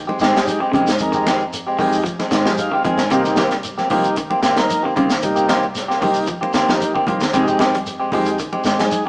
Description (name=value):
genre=afrobeat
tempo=114 BPM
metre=4/4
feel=straight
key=F minor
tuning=A4 = 440 Hz
part: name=electric guitar at the edge of break-up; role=arpeggios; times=0.0-9.1 s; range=C3 to G3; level=-24 LUFS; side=equal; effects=none
part: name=semi-hollow electric guitar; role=stabs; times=0.1-9.1 s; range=Eb3 to G4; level=-19 LUFS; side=equal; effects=none
part: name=congas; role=percussion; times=0.1-9.1 s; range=none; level=-29 LUFS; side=equal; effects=none
part: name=fingered electric bass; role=bass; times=0.2-8.9 s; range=C2 to Ab2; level=-27 LUFS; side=equal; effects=none
part: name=tight funk drum kit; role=drums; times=0.2-9.0 s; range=hi-hat, kick drum, snare drum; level=-22 LUFS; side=equal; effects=none
part: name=shekere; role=percussion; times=0.2-9.1 s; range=none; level=-33 LUFS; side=equal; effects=none
part: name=combo organ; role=accompaniment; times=0.4-9.0 s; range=Ab3 to Ab5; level=-22 LUFS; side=equal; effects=none
room=moderate stone room reverb, RT60 1.4 s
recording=band playing live in one room, small speaker sound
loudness=-15 LUFS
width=side -35 dB against mid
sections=0.0-9.1 A section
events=transistor combo organ fill 2.3-3.1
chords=0.0 Fm9; 3.1 Cm7; 7.3 Fm9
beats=0.47 | 1.00 1.53 2.05 2.58 | 3.11 3.64 4.17 4.69 | 5.22 5.75 6.28 6.81 | 7.33 7.86 8.39 8.92